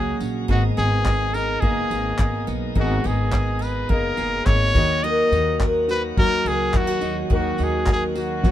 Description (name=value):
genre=acoustic pop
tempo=106 BPM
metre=4/4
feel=straight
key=unclear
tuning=A4 = 440 Hz
part: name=bright trumpet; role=melody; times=0.0-8.5 s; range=F#4 to D#5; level=-24 LUFS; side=left 1 dB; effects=none
part: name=picked steel-string acoustic guitar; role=accompaniment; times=0.0-8.5 s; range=G#2 to A#4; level=-25 LUFS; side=right 1 dB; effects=none
part: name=warm concert grand piano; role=accompaniment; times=0.0-8.5 s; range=A#3 to F#5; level=-30 LUFS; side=left 5 dB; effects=none
part: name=bright tonewheel organ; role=sustained chords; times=0.0-8.5 s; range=B2 to A#4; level=-34 LUFS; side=equal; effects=overdrive, slow rotary speaker
part: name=upright bass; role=bass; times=0.0-8.5 s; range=F#1 to D#3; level=-25 LUFS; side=equal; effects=none
part: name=cloth-damped thuddy drum kit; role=drums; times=0.2-8.5 s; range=handclaps, kick drum, snare drum, tambourine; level=-21 LUFS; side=equal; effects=none
room=little or no reverb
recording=minimal, uncompressed stereo recording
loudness=-18 LUFS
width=side -12 dB against mid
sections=0.0-8.5 A section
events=none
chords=0.5 G#madd9; 4.8 D#m